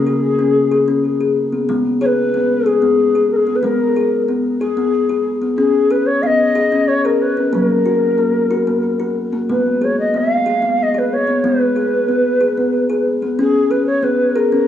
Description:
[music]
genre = world meditative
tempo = 62 BPM (dotted quarters)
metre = 6/8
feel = straight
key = G# dorian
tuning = A4 = 441 Hz
[part]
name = mellow hollow Native American-style cedar flute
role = melody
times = 0.0-14.7 s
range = G#4 to E#5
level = -16 LUFS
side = left 2 dB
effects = cassette tape, tape echo
[part]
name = kalimba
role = arpeggios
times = 0.0-14.7 s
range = C#3 to G#4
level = -17 LUFS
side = left 1 dB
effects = cassette tape, tape echo
[sound]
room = wet booth ambience, RT60 0.2 s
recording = home recording on cassette, small room ambience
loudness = -14 LUFS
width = side -10 dB against mid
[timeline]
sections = 0.0-1.7 A section; 1.7-14.7 B section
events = none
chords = 0.0 C#5; 1.7 G#m; 5.6 C#5; 7.5 F#; 9.5 G#m; 13.4 C#5

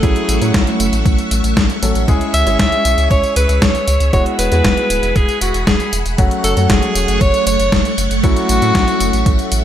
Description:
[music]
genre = italo disco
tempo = 117 BPM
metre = 4/4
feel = straight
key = unclear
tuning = A4 = 440 Hz
[part]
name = bright alto saxophone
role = melody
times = 0.0-9.6 s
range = F#4 to E5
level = -18 LUFS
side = equal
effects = ping-pong delay
[part]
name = phased string machine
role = sustained chords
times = 0.0-9.6 s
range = A3 to C#6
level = -21 LUFS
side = right 1 dB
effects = ensemble chorus, phaser, vintage 12-bit sampler grit
[part]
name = warm grand piano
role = stabs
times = 0.0-9.6 s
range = F#3 to A4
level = -21 LUFS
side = left 2 dB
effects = low-pass filter
[part]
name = round analog bass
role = bass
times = 0.0-9.6 s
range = D1 to A2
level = -18 LUFS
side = equal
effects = tube saturation
[part]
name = detuned 8-bit digital drum machine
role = drums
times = 0.0-9.6 s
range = hi-hat, snare drum, tambourine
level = -20 LUFS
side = left 1 dB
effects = overdrive, small room ambience, gated reverb
[part]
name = electronic kick drum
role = drums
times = 0.0-9.4 s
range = none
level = -16 LUFS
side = equal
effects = overdrive, small room ambience
[sound]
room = light reverb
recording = none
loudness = -12 LUFS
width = side -10 dB against mid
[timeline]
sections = 0.0-9.6 A section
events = none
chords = 0.0 A6; 2.1 C#m; 4.1 Eadd9; 6.2 F#m; 8.2 A6

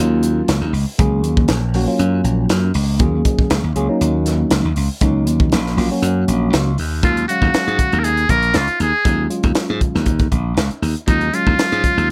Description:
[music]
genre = electric jazz fusion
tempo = 119 BPM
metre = 4/4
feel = straight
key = Eb minor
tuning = A4 = 441 Hz
[part]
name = tine electric piano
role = accompaniment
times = 0.0-12.1 s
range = Gb3 to F5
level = -23 LUFS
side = equal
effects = subtle chorus
[part]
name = slap bass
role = bass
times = 0.0-12.1 s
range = Bb1 to Ab2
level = -20 LUFS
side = equal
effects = none
[part]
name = crisp fusion drum kit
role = drums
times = 0.2-12.1 s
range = hi-hat, kick drum, snare drum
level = -22 LUFS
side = equal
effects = none
[part]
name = trumpet with metal mute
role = melody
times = 7.0-12.1 s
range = Eb4 to Bb4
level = -20 LUFS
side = equal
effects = slapback echo
[sound]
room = little or no reverb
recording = none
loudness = -17 LUFS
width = mono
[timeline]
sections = 0.0-7.0 A section; 7.0-12.1 B section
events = none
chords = 0.0 Ebm9

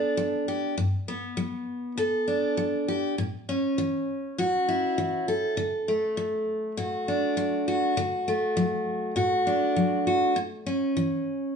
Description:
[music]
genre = country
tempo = 100 BPM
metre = 4/4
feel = straight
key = D major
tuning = A4 = 435 Hz
[part]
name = picked steel-string acoustic guitar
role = solo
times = 0.0-11.6 s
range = G2 to A4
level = -24 LUFS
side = equal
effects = none
[sound]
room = wet studio reverb, RT60 0.8 s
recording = heard from further back in the room, nothing above 10.6 kHz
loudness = -24 LUFS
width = side -6 dB against mid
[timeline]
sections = 0.0-11.6 A section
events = none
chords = 0.0 G; 3.2 A; 5.6 D; 10.4 A

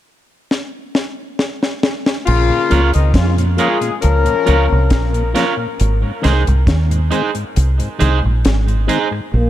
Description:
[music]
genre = dub reggae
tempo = 68 BPM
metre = 4/4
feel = straight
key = unclear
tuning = A4 = 440 Hz
[part]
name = deep reggae drum kit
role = drums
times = 0.5-9.1 s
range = crash cymbal, hi-hat, kick drum, snare drum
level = -20 LUFS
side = left 1 dB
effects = none
[part]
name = dark horn section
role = second line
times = 2.3-5.3 s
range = Db3 to Bb4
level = -20 LUFS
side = left 6 dB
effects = dub echo
[part]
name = deep dub fingered electric bass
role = bass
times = 2.3-9.5 s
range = Ab1 to F2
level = -14 LUFS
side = equal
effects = none
[part]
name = mellow tonewheel organ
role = accompaniment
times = 2.5-9.2 s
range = Ab2 to Db4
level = -24 LUFS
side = left 2 dB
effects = chorus vibrato, slow rotary speaker, low-pass filter, dub echo
[part]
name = electric guitar at the edge of break-up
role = accompaniment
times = 2.7-9.2 s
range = Eb4 to Db5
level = -21 LUFS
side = right 6 dB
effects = low-pass filter, dub echo
[part]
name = breathy trombone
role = melody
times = 9.3-9.5 s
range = Bb3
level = -19 LUFS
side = equal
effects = low-pass filter
[sound]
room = light reverb, small room reverb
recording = none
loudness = -13 LUFS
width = side -13 dB against mid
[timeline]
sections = 0.0-2.3 A section; 2.3-9.3 B section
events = drum fill 0.5-2.3; kick muted 7.6-9.3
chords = 0.0 N.C.; 2.3 Bbm; 5.8 Ab

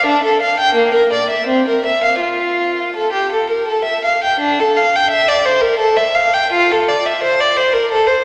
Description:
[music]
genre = classical, baroque-style suite movement for unaccompanied violin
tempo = 79-89 BPM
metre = 3/4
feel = rubato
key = F major, D minor from 4.4 s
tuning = A4 = 440 Hz
[part]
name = rich violin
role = solo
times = 0.0-8.2 s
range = Bb3 to G5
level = -15 LUFS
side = equal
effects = none
[sound]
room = wet cathedral reverb, RT60 4.3 s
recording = none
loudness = -15 LUFS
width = mono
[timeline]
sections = 0.0-4.4 A section; 4.4-8.2 A section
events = none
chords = none

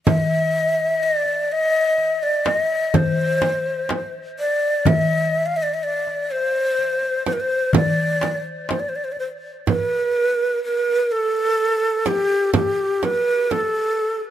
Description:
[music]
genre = Arabic maqam ensemble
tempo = 125 BPM (eighths)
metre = 10/8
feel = straight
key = C maqam rast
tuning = A4 = 441 Hz
[part]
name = breathy ney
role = melody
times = 0.1-14.2 s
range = G4 to F5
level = -19 LUFS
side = equal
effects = plate reverb, tape echo
[part]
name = darbuka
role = percussion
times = 0.1-9.3 s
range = none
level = -22 LUFS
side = left 3 dB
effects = none
[part]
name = frame drum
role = percussion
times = 0.1-13.7 s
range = none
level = -21 LUFS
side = right 5 dB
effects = none
[sound]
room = light reverb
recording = none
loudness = -18 LUFS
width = side -11 dB against mid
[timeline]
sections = 0.0-9.7 A section; 9.7-14.3 B section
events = none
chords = none

